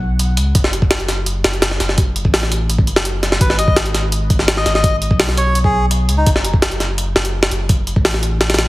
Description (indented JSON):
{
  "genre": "drum and bass, jungle",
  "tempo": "168 BPM",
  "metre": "4/4",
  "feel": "straight",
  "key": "unclear",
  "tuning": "A4 = 440 Hz",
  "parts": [
    { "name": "saturated sub bass", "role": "bass", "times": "0.0-8.7 s", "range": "F#1 to C#2", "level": "-19 LUFS", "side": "equal", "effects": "tube saturation" },
    { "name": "jungle sampler-style drum kit", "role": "drums", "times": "0.2-8.7 s", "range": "hi-hat, kick drum, snare drum", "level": "-15 LUFS", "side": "equal", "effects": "none" },
    { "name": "melodica", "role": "melody", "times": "3.4-6.3 s", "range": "D#4 to D#5", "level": "-21 LUFS", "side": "left 1 dB", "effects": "dub echo" }
  ],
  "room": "little or no reverb",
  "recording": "heavily compressed radio sound",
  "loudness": "-13 LUFS",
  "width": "side -18 dB against mid",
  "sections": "0.0-8.7 A section",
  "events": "kick drops out 8.4",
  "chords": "0.0 N.C.; 0.6 F#m; 3.4 G#m; 6.3 F#m"
}